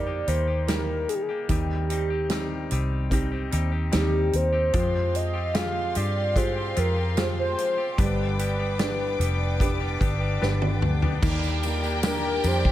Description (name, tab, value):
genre	pop ballad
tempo	74 BPM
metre	4/4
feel	straight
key	C minor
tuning	A4 = 444 Hz
part	mellow horn-like synth lead	melody	0.0-12.7 s	G4 to F5	-28 LUFS	equal	chorus
part	felt-muted upright piano	accompaniment	0.0-12.7 s	Eb3 to B4	-32 LUFS	right 1 dB	none
part	direct-recorded clean electric guitar	arpeggios	0.0-12.7 s	G2 to G4	-34 LUFS	left 7 dB	digital delay
part	vintage muted fingered electric bass	bass	0.0-12.7 s	F1 to G2	-26 LUFS	equal	none
part	natural country drum kit	drums	0.3-12.7 s	crash cymbal, hi-hat, kick drum, ride cymbal, snare drum, toms	-28 LUFS	equal	none
part	rich studio string section	sustained chords	4.7-12.7 s	F4 to D6	-34 LUFS	equal	none
part	rich studio violin section	second line	11.2-12.7 s	G4 to G5	-31 LUFS	right 1 dB	none
part	tambourine	percussion	11.2-12.6 s	none	-42 LUFS	right 9 dB	none
room	studio reverb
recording	none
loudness	-22 LUFS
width	side -13 dB against mid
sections	0.0-11.2 A section; 11.2-12.7 B section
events	drum fill 10.4-11.2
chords	0.0 Eb; 1.5 Cm; 4.7 Fmadd9; 8.0 G; 11.2 Ebmaj7